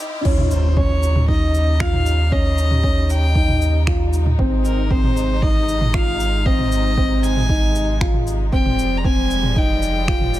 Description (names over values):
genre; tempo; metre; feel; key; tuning
piano and strings electronica; 116 BPM; 4/4; straight; unclear; A4 = 440 Hz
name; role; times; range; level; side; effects
rich studio string section; sustained chords; 0.0-10.4 s; C3 to G4; -30 LUFS; left 1 dB; sidechain pumping
dark baby grand piano; riff; 0.0-10.4 s; C4 to F4; -23 LUFS; left 1 dB; ping-pong delay
riser and impact; sound effects; 0.0-2.3 s; none; -29 LUFS; equal; none
warm sub bass; bass; 0.2-10.4 s; F1 to Eb2; -20 LUFS; equal; sidechain pumping
deep house drum kit; drums; 0.3-10.4 s; crash cymbal, finger snaps, shaker, toms; -26 LUFS; right 1 dB; high-pass filter on toms, high-pass filter on perc, high-pass filter on cymbals, high-pass filter on snare
electronic kick drum; drums; 0.3-10.2 s; none; -20 LUFS; equal; none
bright violin; melody; 0.5-10.4 s; Bb4 to Bb5; -25 LUFS; left 1 dB; none
room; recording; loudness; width
digital ambience; high-pass filter; -15 LUFS; side -14 dB against mid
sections
0.3-10.4 A section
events
riser 0.0; drop 0.3-10.4; impact 0.3-2.3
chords
0.3 Eb7; 4.4 Ab; 8.5 Fmadd9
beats
| 0.25 0.77 1.29 1.80 | 2.32 2.84 3.36 3.87 | 4.39 4.91 5.42 5.94 | 6.46 6.98 7.49 8.01 | 8.53 9.05 9.56 10.08